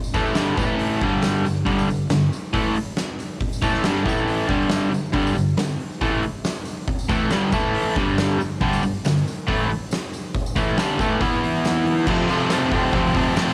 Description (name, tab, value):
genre	garage rock duo or trio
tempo	138 BPM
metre	4/4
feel	straight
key	G mixolydian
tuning	A4 = 436 Hz
part	tambourine	percussion	0.0-13.5 s	none	-44 LUFS	equal	none
part	crunchy overdriven guitar	riff	0.1-13.5 s	F2 to E4	-22 LUFS	equal	cassette tape
part	oversized low-tuned drum kit	drums	0.1-13.5 s	crash cymbal, hi-hat, kick drum, snare drum	-27 LUFS	equal	cassette tape
room	light reverb, small room reverb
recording	home recording on cassette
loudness	-22 LUFS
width	mono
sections	0.0-12.1 A section; 12.1-13.5 B section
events	none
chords	0.0 G5; 0.6 A5; 1.0 G5; 4.1 A5; 4.5 G5; 7.5 A5; 8.0 G5; 11.2 E5; 12.1 F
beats	0.37 0.80 1.24 | 1.67 2.11 2.54 2.98 | 3.41 3.85 4.28 4.71 | 5.15 5.58 6.02 6.45 | 6.88 7.32 7.75 8.18 | 8.62 9.05 9.48 9.92 | 10.35 10.78 11.21 11.64 | 12.08 12.51 12.94 13.37